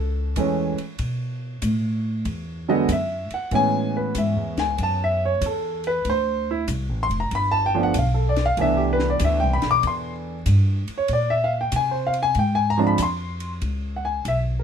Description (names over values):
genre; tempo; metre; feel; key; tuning
jazz piano trio; 95 BPM; 4/4; swing 67% on 8ths; unclear; A4 = 440 Hz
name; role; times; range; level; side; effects
warm concert grand piano; melody; 0.0-14.6 s; D3 to D6; -22 LUFS; right 1 dB; none
upright bass; bass; 0.0-14.6 s; F1 to C3; -24 LUFS; equal; none
compact cocktail drum kit; drums; 0.4-14.5 s; hi-hat, kick drum, ride cymbal, snare drum; -34 LUFS; left 2 dB; none
room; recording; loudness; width
light reverb; minimal, uncompressed stereo recording; -20 LUFS; side -8 dB against mid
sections
0.0-13.6 A section; 13.6-14.6 B section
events
grand piano solo 0.0-13.6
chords
0.0 F#m7 (rootless); 1.0 Asus2; 2.3 Esus2; 3.5 Amaj7; 6.1 Dm7; 7.3 G7; 8.6 Cmaj13; 11.1 Bb7sus2; 13.6 N.C.